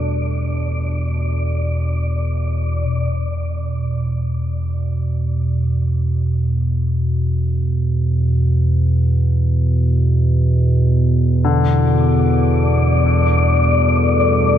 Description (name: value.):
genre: dark ambient drone.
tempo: free time.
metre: none.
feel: none.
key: unclear.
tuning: A4 = 440 Hz.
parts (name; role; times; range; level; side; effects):
deep dark ambient pad; sustained chords; 0.0-2.9, 13.4-14.6 s; G3 to A4; -29 LUFS; left 1 dB; chorus, built-in reverb.
deep rumbling drone; drone; 0.0-14.6 s; E2 to B2; -16 LUFS; right 1 dB; built-in reverb.
wind-like tuned noise texture; texture; 0.0-2.9, 12.2-14.6 s; D5; -23 LUFS; left 3 dB; built-in reverb.
clear concert grand piano; arpeggios; 11.4-14.6 s; D3; -21 LUFS; left 6 dB; ping-pong delay.
room: moderate huge ambient reverb, RT60 8.1 s.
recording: cassette tape.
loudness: -15 LUFS.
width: side -10 dB against mid.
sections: 0.0-2.9 A section; 2.9-14.6 B section.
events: none.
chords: 0.0 Gadd9; 2.9 E5; 11.4 Gadd9.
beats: free time.